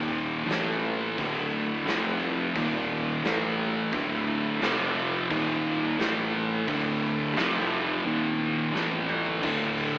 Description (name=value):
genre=stoner and doom metal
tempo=87 BPM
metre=4/4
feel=straight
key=D minor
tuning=A4 = 443 Hz
part: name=swarming drone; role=sustained chords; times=0.0-10.0 s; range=A3 to E5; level=-36 LUFS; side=equal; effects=none
part: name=fuzz guitar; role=riff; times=0.0-10.0 s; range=D2 to A3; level=-30 LUFS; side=left 2 dB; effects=distortion
part: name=fuzz guitar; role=riff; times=0.0-10.0 s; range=D2 to A3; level=-34 LUFS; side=equal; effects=none
part: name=thick fuzz guitar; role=riff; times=0.0-10.0 s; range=D2 to A3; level=-29 LUFS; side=right 2 dB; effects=distortion
part: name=growling fingered electric bass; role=bass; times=0.0-10.0 s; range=D1 to A1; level=-37 LUFS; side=equal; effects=overdrive
part: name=big rock drum kit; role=drums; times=0.5-9.9 s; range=crash cymbal, hi-hat, kick drum, snare drum, toms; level=-33 LUFS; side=equal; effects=none
room=light reverb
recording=band playing live in one room, AM radio sound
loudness=-24 LUFS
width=side -20 dB against mid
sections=0.0-9.4 A section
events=drum fill 8.7-9.4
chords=0.5 A5; 1.2 D5; 1.9 F5; 2.6 Eb5; 3.2 A5; 3.9 D5; 4.6 F5; 5.3 Eb5; 6.0 A5; 6.7 D5; 7.4 F5; 8.0 Eb5; 8.7 A5; 9.4 D5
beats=0.50 | 1.18 1.87 2.56 3.24 | 3.93 4.62 5.30 5.99 | 6.67 7.36 8.05 8.73 | 9.42